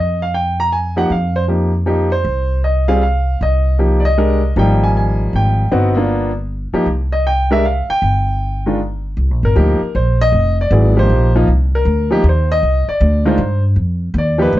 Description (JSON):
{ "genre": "jazz piano trio", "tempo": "156 BPM", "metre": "3/4", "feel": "swing 65% on 8ths", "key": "C minor", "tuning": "A4 = 441 Hz", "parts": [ { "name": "clear grand piano", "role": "melody", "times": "0.0-14.6 s", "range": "Eb3 to Bb5", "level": "-16 LUFS", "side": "equal", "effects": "none" }, { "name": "upright bass", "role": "bass", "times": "0.0-14.6 s", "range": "F1 to G2", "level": "-15 LUFS", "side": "equal", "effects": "none" } ], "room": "little or no reverb", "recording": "dark, warm production, nothing above 7.7 kHz", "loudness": "-13 LUFS", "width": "side -15 dB against mid", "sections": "0.0-9.2 A section; 9.2-14.6 B section", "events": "grand piano solo 9.2-14.6", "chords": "0.0 Fsus2; 2.2 Cm; 4.6 Ab5; 5.7 G7#9; 6.9 C5; 9.2 Cm9; 10.3 Fm9; 11.5 Cm9; 13.8 F7(no3)", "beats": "0.33 0.71 | 1.10 1.48 1.86 | 2.25 2.63 3.02 | 3.40 3.79 4.17 | 4.55 4.94 5.32 | 5.71 6.09 6.48 | 6.86 7.25 7.63 | 8.02 8.40 8.79 | 9.17 9.56 9.94 | 10.32 10.71 11.09 | 11.47 11.86 12.24 | 12.62 13.00 13.38 | 13.77 14.15 14.53" }